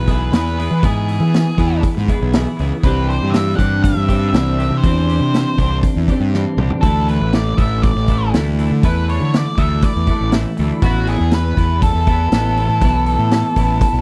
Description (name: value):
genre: indie rock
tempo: 120 BPM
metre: 4/4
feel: straight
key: unclear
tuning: A4 = 439 Hz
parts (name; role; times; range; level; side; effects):
- octave-fuzz lead guitar; melody; 0.0-14.0 s; F#4 to F#5; -24 LUFS; equal; distortion, slapback echo
- twelve-string electric guitar; riff; 0.0-14.0 s; E3 to G#4; -23 LUFS; equal; lush chorus
- fuzz fingered electric bass; bass; 0.0-14.0 s; A1 to E3; -20 LUFS; equal; overdrive
- twangy electric guitar; riff; 0.1-13.9 s; E3 to A4; -39 LUFS; equal; none
- vintage drum kit; drums; 0.1-13.9 s; hi-hat, kick drum, snare drum, toms; -20 LUFS; equal; none
room: little or no reverb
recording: dry, close 1970s-style studio recording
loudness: -16 LUFS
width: mono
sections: 0.0-14.0 A section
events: drum fill 6.3-6.8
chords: 0.0 E; 2.8 Cadd9; 6.8 Dsus2; 10.8 Asus2